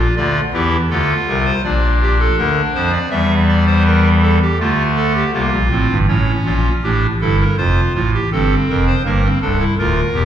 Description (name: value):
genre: classical, baroque-style 3-part fugue for pipe organ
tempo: 81 BPM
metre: 4/4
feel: straight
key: unclear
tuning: A4 = 440 Hz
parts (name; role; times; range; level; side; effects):
- pipe organ, clarinet reed; solo; 0.0-10.2 s; C1 to E5; -13 LUFS; equal; none
room: wet recital hall reverb, RT60 1.5 s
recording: heard from further back in the room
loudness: -13 LUFS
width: side -10 dB against mid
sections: 0.0-6.1 A section; 6.1-10.2 B section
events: none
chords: 0.2 Dm; 1.6 Bb; 3.1 Edim; 4.6 Dm; 6.1 A7; 7.6 Fadd9; 9.1 Edim